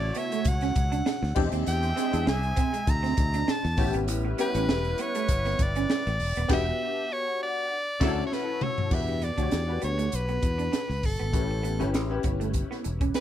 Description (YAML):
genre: polished 1980s jazz-funk pop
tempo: 99 BPM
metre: 4/4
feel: swing 54% on 16ths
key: unclear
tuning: A4 = 437 Hz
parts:
  - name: edgy soprano saxophone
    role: melody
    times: 0.0-13.2 s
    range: A4 to Bb5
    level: -30 LUFS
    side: equal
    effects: slapback echo
  - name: mellow horn section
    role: second line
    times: 0.0-8.2 s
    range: D3 to E5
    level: -38 LUFS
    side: right 2 dB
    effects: none
  - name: clear grand piano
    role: accompaniment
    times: 0.0-13.2 s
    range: C#3 to C#5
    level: -33 LUFS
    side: left 6 dB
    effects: ensemble chorus
  - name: modern bright fingered electric bass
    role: bass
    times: 0.0-13.1 s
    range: Eb1 to E2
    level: -29 LUFS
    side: equal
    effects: none
  - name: crisp fusion drum kit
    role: drums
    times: 0.1-13.2 s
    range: crash cymbal, hi-hat, kick drum, snare drum, toms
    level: -29 LUFS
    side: equal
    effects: none
  - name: electric guitar through a small old amp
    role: riff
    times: 0.2-13.2 s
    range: G#3 to D4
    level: -33 LUFS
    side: right 9 dB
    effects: ensemble chorus
room: little or no reverb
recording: none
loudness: -24 LUFS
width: side -11 dB against mid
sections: 0.0-8.9 A section; 8.9-13.2 B section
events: band accent 6.5-8.9; drum fill 8.3-8.9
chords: 0.0 Dmaj7; 1.4 E7alt; 3.8 A9; 6.5 Em9; 7.7 Dmaj9; 8.9 Em7; 11.3 A9